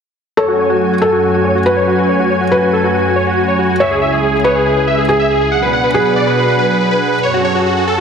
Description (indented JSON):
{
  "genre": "trance",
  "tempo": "140 BPM",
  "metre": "4/4",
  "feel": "straight",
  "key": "F# minor",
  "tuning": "A4 = 439 Hz",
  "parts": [
    { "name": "supersaw chords", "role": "melody", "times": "0.4-8.0 s", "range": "F#4 to F#5", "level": "-15 LUFS", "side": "right 1 dB", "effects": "low-pass filter, ping-pong delay" },
    { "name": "felt-muted upright piano", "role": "second line", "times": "0.4-7.1 s", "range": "G#4 to C#5", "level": "-16 LUFS", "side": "left 1 dB", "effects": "ping-pong delay" },
    { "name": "lush unison pad", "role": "sustained chords", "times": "0.4-8.0 s", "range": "C#2 to G#5", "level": "-16 LUFS", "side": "equal", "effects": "chorus" }
  ],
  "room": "moderate concert hall reverb, RT60 2.3 s",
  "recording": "dense, heavily limited modern master",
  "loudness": "-11 LUFS",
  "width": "side -6 dB against mid",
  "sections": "0.4-8.0 A section",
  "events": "filter sweep on supersaw synth 0.4-8.0",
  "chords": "0.4 F#madd9; 3.8 C#m; 5.5 Bm; 7.2 F#madd9",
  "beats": "| 0.37 0.80 1.23 1.66 | 2.09 2.52 2.94 3.37 | 3.80 4.23 4.66 5.09 | 5.52 5.94 6.37 6.80 | 7.23 7.66"
}